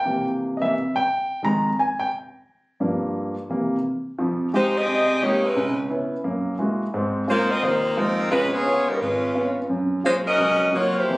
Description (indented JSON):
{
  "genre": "jazz",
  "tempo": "174 BPM",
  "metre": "4/4",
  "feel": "swing 63% on 8ths",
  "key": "F minor",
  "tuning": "A4 = 439 Hz",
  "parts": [
    { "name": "warm grand piano", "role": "accompaniment", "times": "0.0-11.2 s", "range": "Ab1 to Bb5", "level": "-23 LUFS", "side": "equal", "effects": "none" },
    { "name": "warm saxophone section", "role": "melody", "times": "4.6-11.2 s", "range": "F3 to Eb5", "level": "-20 LUFS", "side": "equal", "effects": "plate reverb" }
  ],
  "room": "moderate club reverb, RT60 0.7 s",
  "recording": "recorded on a phone in the room, club reverb, compression",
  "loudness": "-20 LUFS",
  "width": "side -22 dB against mid",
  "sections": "0.0-4.2 A section; 4.2-11.2 B section",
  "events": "grand piano solo 0.0-4.2",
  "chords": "0.0 C7; 1.4 Fm7; 2.8 Gm7; 3.5 C7; 4.2 Fm9; 5.6 Dbm7; 6.2 Gb9; 6.9 Ab69; 8.3 Db7; 9.7 Gbmaj7"
}